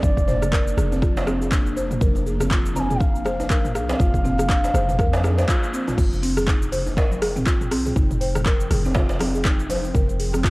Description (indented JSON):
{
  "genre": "afro house",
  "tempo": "121 BPM",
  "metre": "4/4",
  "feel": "swing 58% on 16ths",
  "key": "F dorian",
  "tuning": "A4 = 441 Hz",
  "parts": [
    { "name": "mellow bass bansuri", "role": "melody", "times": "0.0-5.7 s", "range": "D5 to Bb5", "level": "-28 LUFS", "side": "right 1 dB", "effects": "cassette tape, tape echo" },
    { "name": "ethereal airy pad", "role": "sustained chords", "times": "0.0-10.5 s", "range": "F3 to G5", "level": "-33 LUFS", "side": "equal", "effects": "ensemble chorus, built-in reverb, sidechain pumping, cassette tape" },
    { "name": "buzzing marimba with soft mallets", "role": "arpeggios", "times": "0.0-10.5 s", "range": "C4 to C5", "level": "-26 LUFS", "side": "equal", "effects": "sidechain pumping, cassette tape, tape echo" },
    { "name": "warm 808-style bass", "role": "bass", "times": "0.0-10.5 s", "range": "F1 to F2", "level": "-24 LUFS", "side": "equal", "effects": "sidechain pumping" },
    { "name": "deep house drum kit", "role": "drums", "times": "0.0-10.5 s", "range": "cabasa, crash cymbal, handclaps, hi-hat, rim click, toms", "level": "-27 LUFS", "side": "equal", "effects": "overdrive, small room reverb, cassette tape" },
    { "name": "electronic kick drum", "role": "drums", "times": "0.0-10.5 s", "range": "none", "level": "-20 LUFS", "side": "equal", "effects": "overdrive, small room reverb, cassette tape" },
    { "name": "congas", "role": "percussion", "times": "0.0-10.5 s", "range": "none", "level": "-34 LUFS", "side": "left 1 dB", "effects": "none" },
    { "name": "djembe", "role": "percussion", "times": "0.3-9.8 s", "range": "none", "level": "-31 LUFS", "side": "right 1 dB", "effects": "none" }
  ],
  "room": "light reverb",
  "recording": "home recording on cassette",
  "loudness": "-18 LUFS",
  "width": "side -22 dB against mid",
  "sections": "0.0-6.0 A section; 6.0-10.5 A section",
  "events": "band accent 5.5",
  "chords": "0.0 Bb/F; 6.0 Fm",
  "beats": "| 0.03 0.53 1.02 1.52 | 2.01 2.51 3.00 3.50 | 4.00 4.49 4.99 5.48 | 5.98 6.48 6.97 7.47 | 7.96 8.46 8.96 9.45 | 9.95 10.44"
}